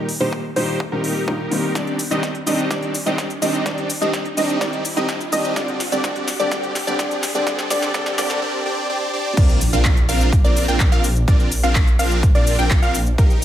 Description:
EDM, festival progressive house; 126 BPM; 4/4; straight; Bb major; A4 = 439 Hz
felt-muted upright piano; accompaniment; 0.0-8.4 s; Bb2 to Eb4; -25 LUFS; left 1 dB; sidechain pumping, dub echo
wide unison pluck; arpeggios; 0.0-13.4 s; Bb4 to G5; -26 LUFS; right 1 dB; sidechain pumping, dub echo
supersaw chords; riff; 0.0-13.4 s; C4 to G5; -23 LUFS; right 1 dB; sidechain pumping, low-pass filter, dub echo
riser and impact; sound effects; 0.1-11.3 s; -30 LUFS; equal
big-room dance drum kit; drums; 0.1-13.4 s; cabasa, crash cymbal, handclaps, hi-hat, snare drum; -26 LUFS; left 1 dB; high-pass filter on hats, high-pass filter on snare, high-pass filter on perc, high-pass filter on cymbals, high-pass filter on room
electronic kick drum; drums; 0.3-13.3 s; -17 LUFS; equal; high-pass filter on kick, high-pass filter on room
wide detuned saw bass; bass; 9.4-13.4 s; Bb1; -21 LUFS; equal; chorus, sidechain pumping
light reverb, digital ambience; high-pass filter; -17 LUFS; side -11 dB against mid
0.0-9.4 A section; 9.4-13.4 B section
build-up 0.0-9.4; filter sweep on synth pluck 0.0-9.4; riser 0.1-8.4; drum fill 1.8-8.4; drop 9.4-13.4; impact 9.4-11.3
0.0 Eb/Bb; 1.8 Cmadd9; 5.6 G5; 9.4 Bbadd9

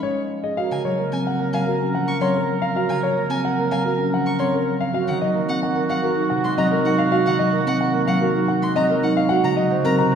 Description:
classical, minimalist pattern music; 110 BPM; 4/4; straight; Gb lydian; A4 = 440 Hz
clear concert grand piano; melody; 0.0-10.2 s; Bb4 to Bb5; -24 LUFS; left 3 dB
concert harp; accompaniment; 0.0-10.2 s; C3 to C#4; -24 LUFS; left 1 dB
marimba with soft mallets; arpeggios; 0.0-10.2 s; C4 to C5; -24 LUFS; right 4 dB
warm oboe; second line; 0.6-10.2 s; Gb4 to Bb4; -27 LUFS; right 4 dB
rich violin; arpeggios; 0.7-9.9 s; Gb5 to Db6; -32 LUFS; left 2 dB
wet scoring stage reverb, RT60 2.1 s; heard from further back in the room; -18 LUFS; side -7 dB against mid
0.6-10.2 A section
0.0 C#13; 0.6 Gbmaj9; 4.9 Ab9; 9.3 Ebm7

